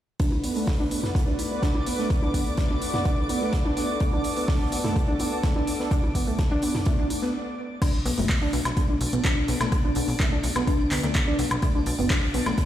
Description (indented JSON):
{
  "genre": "progressive house",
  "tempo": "126 BPM",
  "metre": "4/4",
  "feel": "straight",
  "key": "B minor",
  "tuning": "A4 = 440 Hz",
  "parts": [
    { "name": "lush unison pad", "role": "sustained chords", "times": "0.2-7.3 s", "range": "A3 to B4", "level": "-32 LUFS", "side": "right 1 dB", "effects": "chorus, sidechain pumping" },
    { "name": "soft round pluck", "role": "arpeggios", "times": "0.2-12.5 s", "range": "A3 to D4", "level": "-28 LUFS", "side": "equal", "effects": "ensemble chorus, cassette tape, sidechain pumping, digital delay" },
    { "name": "electronic kick drum", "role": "drums", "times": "0.2-12.7 s", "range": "none", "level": "-24 LUFS", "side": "equal", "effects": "none" },
    { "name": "huge arena drum kit", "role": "drums", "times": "0.2-12.7 s", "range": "hi-hat, snare drum", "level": "-39 LUFS", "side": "right 1 dB", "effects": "high-pass filter on hats, high-pass filter on snare, high-pass filter on room" },
    { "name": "twinkling granular texture", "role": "texture", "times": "1.0-12.7 s", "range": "D4 to D7", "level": "-35 LUFS", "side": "left 1 dB", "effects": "built-in reverb, sidechain pumping" },
    { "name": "electronic congas and toms", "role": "percussion", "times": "0.3-7.2 s", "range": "none", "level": "-34 LUFS", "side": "left 1 dB", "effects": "sidechain pumping on perc, sidechain pumping on toms" },
    { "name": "deep house drum kit", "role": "drums", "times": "0.4-12.7 s", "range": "crash cymbal, handclaps, hi-hat, woodblock", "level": "-31 LUFS", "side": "left 1 dB", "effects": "none" },
    { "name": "plucky analog bass", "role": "bass", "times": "8.1-12.5 s", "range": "F#1 to D2", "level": "-27 LUFS", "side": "equal", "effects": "sidechain pumping" }
  ],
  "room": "light reverb, digital ambience",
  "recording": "played on a big sound system in a bare room, stone room reverb",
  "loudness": "-22 LUFS",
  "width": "side -12 dB against mid",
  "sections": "0.2-7.8 A section; 7.8-12.7 B section",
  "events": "filter sweep on synth pluck 0.2-7.8; stop 7.3-7.8",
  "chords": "0.2 Bm7",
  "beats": "| 0.20 0.67 1.15 1.63 | 2.10 2.58 3.06 3.53 | 4.01 4.48 4.96 5.44 | 5.91 6.39 6.87 7.34 | 7.82 8.29 8.77 9.25 | 9.72 10.20 10.67 11.15 | 11.63 12.10 12.58"
}